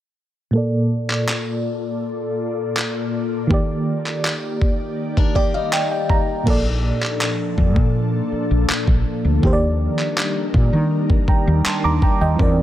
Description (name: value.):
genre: contemporary R&B.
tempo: 81 BPM.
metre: 4/4.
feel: straight.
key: Bb major.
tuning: A4 = 440 Hz.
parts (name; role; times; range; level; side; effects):
FM electric piano with tremolo; accompaniment; 0.5-12.6 s; Bb2 to D6; -22 LUFS; right 2 dB; low-pass filter.
ethereal airy pad; sustained chords; 1.0-12.6 s; F3 to D5; -26 LUFS; left 2 dB; ensemble chorus, built-in reverb, sidechain pumping, low-pass filter.
dusty soul sampler-style drum kit; drums; 1.1-12.6 s; crash cymbal, handclaps, kick drum; -20 LUFS; equal; overdrive.
picked acoustic archtop guitar; arpeggios; 5.2-6.4 s; G3 to Bb4; -26 LUFS; left 12 dB; low-pass filter, digital delay.
woody fretless electric bass; bass; 6.5-12.6 s; Bb1 to Eb3; -19 LUFS; equal; none.
room: little or no reverb.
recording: none.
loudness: -17 LUFS.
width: side -13 dB against mid.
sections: 0.5-6.5 A section; 6.5-12.6 B section.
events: filter sweep 0.5-6.5; FM electric piano fill 5.0-6.5.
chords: 0.5 Bbmaj7; 3.5 Ebmaj7; 6.5 Bbmaj7; 9.4 Ebmaj7.